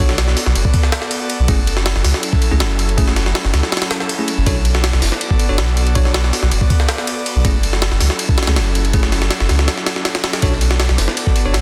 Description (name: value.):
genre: drum and bass, jungle.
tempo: 161 BPM.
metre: 4/4.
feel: straight.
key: B minor.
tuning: A4 = 440 Hz.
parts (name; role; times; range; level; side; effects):
airy breathy pad; sustained chords; 0.0-11.6 s; F#3 to D5; -27 LUFS; equal; chorus.
bell-like tine electric piano; stabs; 0.0-11.5 s; A3 to C#5; -30 LUFS; equal; none.
soft dub sub bass; bass; 0.0-11.6 s; F#1 to C#2; -18 LUFS; equal; tube saturation.
jungle sampler-style drum kit; drums; 0.0-11.6 s; hi-hat, kick drum, ride cymbal, snare drum; -19 LUFS; equal; none.
crunchy breakbeat drum kit; drums; 10.4-11.6 s; hi-hat, snare drum; -33 LUFS; equal; none.
room: digital ambience.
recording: dense, heavily limited modern master.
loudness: -16 LUFS.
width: mono.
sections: 0.0-11.6 A section.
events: break 9.7-10.4.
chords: 0.0 Bm7; 1.5 F#m7; 4.5 Bm7; 7.4 F#m7; 10.4 Bm7.